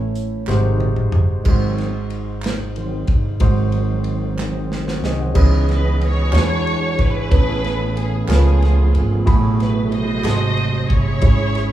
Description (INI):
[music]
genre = slow gospel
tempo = 61 BPM (dotted quarters)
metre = 6/8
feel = straight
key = unclear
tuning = A4 = 440 Hz
[part]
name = warm grand piano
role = accompaniment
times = 0.0-11.7 s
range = G#2 to B#5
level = -24 LUFS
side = equal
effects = none
[part]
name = dark French horn section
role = sustained chords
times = 0.0-5.3 s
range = E3 to E4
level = -36 LUFS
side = left 3 dB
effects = none
[part]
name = upright bass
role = bass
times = 0.0-11.7 s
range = G1 to E2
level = -19 LUFS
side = right 1 dB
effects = none
[part]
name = natural country drum kit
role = drums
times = 0.2-11.7 s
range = crash cymbal, hi-hat, kick drum, ride cymbal, snare drum, toms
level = -19 LUFS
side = equal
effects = none
[part]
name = percussive tonewheel organ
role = sustained chords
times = 0.5-11.7 s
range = B2 to D#5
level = -24 LUFS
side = right 3 dB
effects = slow rotary speaker, overdrive, chorus vibrato
[part]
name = group handclap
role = percussion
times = 0.5-10.5 s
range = none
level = -34 LUFS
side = right 4 dB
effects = none
[part]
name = warm symphonic string section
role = melody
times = 5.7-11.7 s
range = B3 to D#5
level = -24 LUFS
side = equal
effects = none
[sound]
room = moderate large studio reverb, RT60 1.1 s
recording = band playing live in one room, small room ambience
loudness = -15 LUFS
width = side -13 dB against mid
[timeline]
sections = 0.0-1.5 A section; 1.5-5.4 B section; 5.4-11.7 C section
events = drum fill 0.5-1.5, 4.4-5.4; tonewheel organ solo 1.5-5.4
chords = 0.5 G#7; 5.4 C#m9; 6.3 E13; 7.3 Amaj9; 8.3 C#7b13; 9.3 F#m11/A; 10.2 G#7b9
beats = 0.48 | 1.46 2.44 | 3.41 4.39 | 5.37 6.34 | 7.32 8.29 | 9.27 10.25 | 11.22